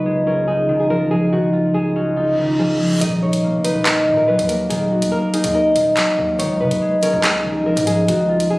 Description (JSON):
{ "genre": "hip hop, drill", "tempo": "142 BPM", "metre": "4/4", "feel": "half-time", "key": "Eb minor", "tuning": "A4 = 439 Hz", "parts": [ { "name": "nylon-string guitar", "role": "melody", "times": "0.0-8.6 s", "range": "F4 to Eb5", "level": "-25 LUFS", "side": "equal", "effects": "low-pass filter, ping-pong delay" }, { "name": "concert harp", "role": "accompaniment", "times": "0.0-8.6 s", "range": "Eb3 to Eb5", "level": "-16 LUFS", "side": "equal", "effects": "low-pass filter" }, { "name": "pipe organ, stopped flute", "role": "sustained chords", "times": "0.0-3.0 s", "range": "Db2 to F4", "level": "-26 LUFS", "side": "right 2 dB", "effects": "none" }, { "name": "reverse cymbal and impact", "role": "sound effects", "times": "2.3-4.7 s", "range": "none", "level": "-32 LUFS", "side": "equal", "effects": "none" }, { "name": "distorted 808-style bass", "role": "bass", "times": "3.0-8.5 s", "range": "Eb1 to Db3", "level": "-27 LUFS", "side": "equal", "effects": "distortion" }, { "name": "drill drum kit", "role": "drums", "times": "3.0-8.5 s", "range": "handclaps, hi-hat", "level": "-21 LUFS", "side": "equal", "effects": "none" } ], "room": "moderate recital hall reverb, RT60 1.5 s, small room ambience", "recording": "recorded on a phone in the room, studio reverb, compression", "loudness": "-15 LUFS", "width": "side -21 dB against mid", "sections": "0.0-3.0 A section; 3.0-8.6 B section", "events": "reverse cymbal 2.3-3.0; impact 3.0-4.7", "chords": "0.0 Dbadd9; 3.0 Ebm; 6.4 Dbadd9", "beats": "0.06 0.48 0.90 | 1.32 1.75 2.17 2.59 | 3.01 3.44 3.86 4.28 | 4.70 5.12 5.55 5.97 | 6.39 6.82 7.24 7.66 | 8.08 8.51" }